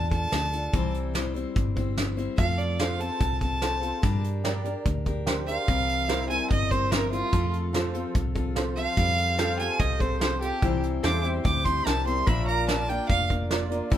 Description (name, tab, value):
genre	honky-tonk and classic country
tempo	146 BPM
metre	4/4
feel	straight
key	F major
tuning	A4 = 440 Hz
part	clear fiddle	melody	0.0-13.3 s	F4 to D6	-28 LUFS	right 2 dB	none
part	picked steel-string acoustic guitar	accompaniment	0.0-14.0 s	Bb2 to C5	-32 LUFS	left 4 dB	none
part	vintage muted fingered electric bass	bass	0.0-14.0 s	F1 to G2	-29 LUFS	equal	none
part	soft brush drum kit	drums	0.1-14.0 s	hi-hat, kick drum, snare drum	-28 LUFS	equal	none
part	honky-tonk upright piano	accompaniment	2.8-13.9 s	E4 to D5	-34 LUFS	right 5 dB	none
part	pedal steel guitar	sustained chords	9.4-13.9 s	G4 to F5	-35 LUFS	left 2 dB	none
room	little or no reverb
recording	minimal, uncompressed stereo recording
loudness	-23 LUFS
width	side -11 dB against mid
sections	0.0-14.0 A section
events	fiddle solo 0.0-14.0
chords	0.0 Dm; 0.7 C; 2.4 F; 4.0 Gm; 5.7 C7; 7.3 F; 9.0 Fadd9; 10.6 C; 12.3 Bb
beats	0.32 | 0.73 1.15 1.56 1.97 | 2.38 2.79 3.21 3.62 | 4.03 4.44 4.86 5.27 | 5.68 6.09 6.50 6.92 | 7.33 7.74 8.15 8.56 | 8.98 9.39 9.80 10.21 | 10.62 11.04 11.45 11.86 | 12.27 12.68 13.09 13.51 | 13.92